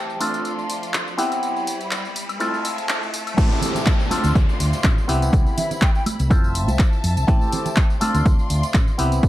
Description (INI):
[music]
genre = filtered disco house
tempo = 123 BPM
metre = 4/4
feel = swing 55% on 16ths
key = unclear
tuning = A4 = 441 Hz
[part]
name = auto-wah clav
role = accompaniment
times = 0.0-9.3 s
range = A3 to C5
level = -25 LUFS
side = equal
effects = phaser, sidechain pumping, low-pass filter
[part]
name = dark studio violin section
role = sustained chords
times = 0.0-9.3 s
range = E4 to C6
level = -32 LUFS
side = left 1 dB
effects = vintage 12-bit sampler grit, sidechain pumping, low-pass filter
[part]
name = riser and downlifter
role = sound effects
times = 0.0-7.3 s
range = none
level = -31 LUFS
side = equal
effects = none
[part]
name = punchy analog drum machine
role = drums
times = 0.1-9.3 s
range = crash cymbal, handclaps, hi-hat, tambourine, woodblock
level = -27 LUFS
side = equal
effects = overdrive, sidechain pumping on hats, sidechain pumping on perc, sidechain pumping on cymbals
[part]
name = hollow-body short-scale fingered electric bass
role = bass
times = 0.2-9.3 s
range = F1 to F2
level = -22 LUFS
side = equal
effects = sidechain pumping, high-pass filter, low-pass filter
[part]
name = electronic kick drum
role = drums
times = 3.4-9.3 s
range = none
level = -17 LUFS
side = equal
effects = overdrive
[part]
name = tambourine and congas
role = percussion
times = 3.4-9.3 s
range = none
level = -30 LUFS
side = right 3 dB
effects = sidechain pumping on perc, low-pass filter on perc
[part]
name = breathy mellow silver concert flute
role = melody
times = 5.6-6.0 s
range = E5 to G5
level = -28 LUFS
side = equal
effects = sidechain pumping, low-pass filter
[sound]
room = light reverb, digital ambience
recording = dark, warm production, high-pass filter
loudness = -18 LUFS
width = side -15 dB against mid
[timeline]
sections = 0.0-3.4 A section; 3.4-9.3 B section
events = build-up 0.0-3.4; riser 0.0-3.4; drop 3.4-9.3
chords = 0.2 Dm7; 1.2 Cmaj7; 2.4 Fmaj7; 3.4 Am7; 4.1 Dm7; 5.1 Cmaj7; 6.3 Fmaj7; 7.3 Am7; 8.0 Dm7